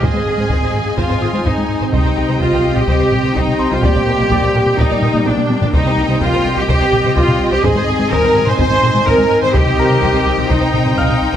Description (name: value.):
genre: cinematic, hybrid orchestral and electronic film score.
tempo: 126 BPM.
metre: 4/4.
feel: straight.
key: C minor.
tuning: A4 = 440 Hz.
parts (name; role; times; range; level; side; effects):
warm symphonic violin section; melody; 0.0-11.4 s; G5 to Ab5; -26 LUFS; left 3 dB; none.
warm symphonic violin section; second line; 0.0-11.4 s; G4 to Eb5; -25 LUFS; left 1 dB; none.
clear symphonic viola section; accompaniment; 0.0-11.4 s; D4 to C5; -22 LUFS; equal; none.
granular cloud pad; sustained chords; 0.0-11.4 s; Eb3 to Eb5; -23 LUFS; left 1 dB; built-in reverb.
warm French horn section; sustained chords; 0.0-11.4 s; Bb3 to Ab4; -24 LUFS; left 3 dB; none.
round analog bass; riff; 0.0-11.4 s; C2 to Bb3; -22 LUFS; left 2 dB; none.
clear symphonic cello section; bass; 0.0-11.4 s; D4 to C5; -18 LUFS; right 1 dB; none.
warm symphonic double bass section; bass; 0.0-11.4 s; Ab1 to C2; -21 LUFS; right 3 dB; none.
taiko ensemble; drums; 0.0-11.4 s; none; -20 LUFS; equal; none.
bright grand piano; texture; 0.0-11.4 s; Bb4 to F6; -26 LUFS; left 2 dB; digital delay.
room: moderate recital hall reverb, RT60 1.5 s.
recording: close, detailed microphones.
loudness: -12 LUFS.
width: side -10 dB against mid.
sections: 0.0-11.4 A section.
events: drum fill 5.3-5.7.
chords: 0.0 Ab; 1.9 Cm; 3.8 Gm/Bb; 5.7 Cm; 7.6 Ab; 9.5 Cm.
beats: | 0.02 0.50 0.98 1.45 | 1.93 2.40 2.88 3.36 | 3.83 4.31 4.79 5.26 | 5.74 6.21 6.69 7.17 | 7.64 8.12 8.60 9.07 | 9.55 10.02 10.50 10.98.